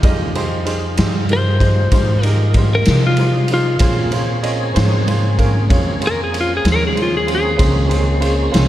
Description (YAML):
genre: slow blues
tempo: 64 BPM (dotted quarters)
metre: 12/8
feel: straight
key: unclear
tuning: A4 = 440 Hz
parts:
  - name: clear upright piano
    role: accompaniment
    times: 0.0-8.7 s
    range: Db4 to Eb5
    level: -24 LUFS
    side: right 4 dB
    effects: none
  - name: tonewheel organ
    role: sustained chords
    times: 0.0-8.7 s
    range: F3 to Ab4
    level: -24 LUFS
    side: equal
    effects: overdrive, chorus vibrato, slow rotary speaker
  - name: upright bass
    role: bass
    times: 0.0-8.7 s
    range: C2 to C3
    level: -17 LUFS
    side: equal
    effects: none
  - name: raw garage drum kit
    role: drums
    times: 0.0-8.7 s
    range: kick drum, ride cymbal, snare drum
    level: -18 LUFS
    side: equal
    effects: none
  - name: clean lap steel guitar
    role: melody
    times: 1.3-8.7 s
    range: F4 to C5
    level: -19 LUFS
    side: left 2 dB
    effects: slapback echo
room: light reverb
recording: none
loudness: -13 LUFS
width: side -13 dB against mid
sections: 0.0-8.7 A section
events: electric slide guitar solo 0.0-8.7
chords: 0.0 Fm9; 3.8 Bbm9